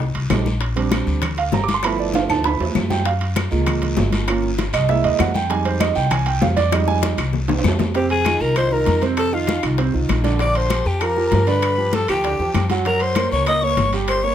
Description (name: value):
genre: Afro-Cuban jazz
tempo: 196 BPM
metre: 4/4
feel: straight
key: F minor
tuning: A4 = 440 Hz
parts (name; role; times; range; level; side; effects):
- upright bass; bass; 0.0-14.3 s; G1 to G2; -22 LUFS; left 1 dB; none
- bongos; percussion; 0.0-14.2 s; none; -28 LUFS; left 10 dB; none
- congas; percussion; 0.0-14.3 s; none; -26 LUFS; left 4 dB; none
- timbales; percussion; 0.1-14.2 s; none; -28 LUFS; right 6 dB; none
- warm grand piano; accompaniment; 0.3-14.3 s; C3 to D6; -22 LUFS; right 7 dB; none
- claves; percussion; 0.3-14.2 s; none; -31 LUFS; left 6 dB; none
- guiro; percussion; 0.3-14.3 s; none; -34 LUFS; left 4 dB; none
- breathy bright jazz flute; second line; 7.9-14.3 s; F5 to Eb6; -25 LUFS; left 6 dB; none
- growling alto saxophone; melody; 8.0-14.3 s; F4 to Eb5; -21 LUFS; left 1 dB; none
room: light reverb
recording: close, detailed microphones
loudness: -16 LUFS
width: side -10 dB against mid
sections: 0.0-7.9 A section; 7.9-14.3 B section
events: grand piano solo 0.0-7.9; drum fill 2.1-3.1, 6.7-7.9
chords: 0.0 F9 (rootless); 0.6 Bb69; 1.8 G13; 3.1 Gbmaj9; 4.3 Gm7b5; 4.9 C7alt; 5.5 Fm9; 7.9 Fm7; 9.2 F5; 10.4 Bb69; 11.6 G; 12.9 Gb